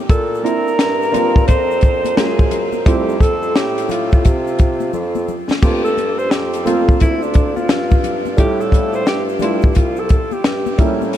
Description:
hip hop, jazz-hop; 87 BPM; 4/4; swing 65% on 16ths; F major; A4 = 437 Hz
mellow bassoon; bass; 0.0-11.2 s; C2 to C3; -22 LUFS; equal
breathy alto saxophone; melody; 0.1-11.0 s; D4 to C5; -20 LUFS; equal; tape echo
compact cocktail drum kit; drums; 0.1-11.2 s; crash cymbal, hi-hat, kick drum, snare drum; -16 LUFS; equal
egg shaker and congas; percussion; 0.1-11.2 s; -31 LUFS; left 11 dB
dark baby grand piano; accompaniment; 0.4-11.2 s; G3 to F4; -22 LUFS; right 2 dB; wide subtle chorus
moderate huge ambient reverb, RT60 7.8 s; dreamy mix soaked in reverb; -13 LUFS; side -11 dB against mid
0.0-5.6 A section; 5.6-11.2 B section
drum fill 4.9-5.6; alto saxophone solo 5.6-11.2
0.1 Bbadd9; 2.2 Gbmaj9; 2.9 Fadd9; 5.6 Gm11; 8.4 Fmaj13 (rootless)

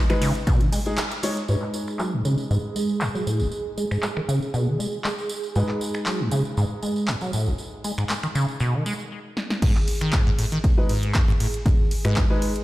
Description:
acid house; 118 BPM; 4/4; swing 54% on 16ths; G# phrygian; A4 = 440 Hz
acid bass, saw; riff; 0.1-12.2 s; G#1 to G#3; -24 LUFS; equal; wide subtle chorus, sidechain pumping, ping-pong delay
warm concert grand piano; stabs; 0.1-12.5 s; G#3 to C#5; -31 LUFS; left 1 dB; low-pass filter, ping-pong delay
punchy analog drum machine; drums; 0.1-12.6 s; crash cymbal, finger snaps, handclaps, hi-hat, ride cymbal, snare drum; -30 LUFS; equal; low-pass filter on hats, studio reverb, low-pass filter on cymbals, low-pass filter on snare
tambourine; percussion; 0.1-9.1 s; -38 LUFS; right 2 dB
electronic kick drum; drums; 0.5-0.6, 9.6-12.3 s; -21 LUFS; equal; studio reverb
warm analog pad; sustained chords; 1.5-12.6 s; G#4; -34 LUFS; right 3 dB; chorus, sidechain pumping
light reverb; played on a big sound system in a bare room, stone room reverb; -21 LUFS; side -16 dB against mid
0.0-1.5 A section; 1.5-9.6 B section; 9.6-12.6 A section
drop 0.0-1.5, 9.6-12.6; break 1.0-1.5, 9.1-9.6; band accent 1.0; filter sweep on drum 1.5-9.6; filter sweep on acid bass 1.5-9.6; filter sweep on grand piano 1.5-9.6; drum fill 9.4
0.0 G#m

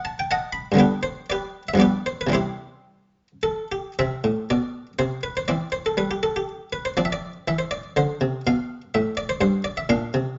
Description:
classical, baroque-style suite movement for harpsichord; 107-126 BPM; 3/4; rubato; C major; A4 = 438 Hz
buff-stop harpsichord; solo; 0.0-10.4 s; F#2 to B5; -24 LUFS; equal
moderate studio reverb, RT60 0.9 s; nothing above 7.7 kHz; -24 LUFS; mono
0.0-4.0 A section; 4.0-10.4 B section
0.0 F#dim7; 0.8 G; 2.3 C; 5.5 C/E; 7.0 Dm7; 8.4 G7

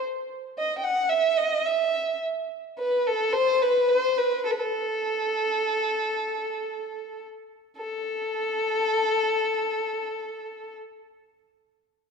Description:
arabic; free time; A maqam nikriz; A4 = 437 Hz
dark violin; solo; 0.6-10.8 s; A4 to G5; -24 LUFS; equal
moderate concert hall reverb, RT60 1.9 s; dark, warm production; -23 LUFS; side -5 dB against mid
0.0-7.8 A section; 7.8-10.0 B section

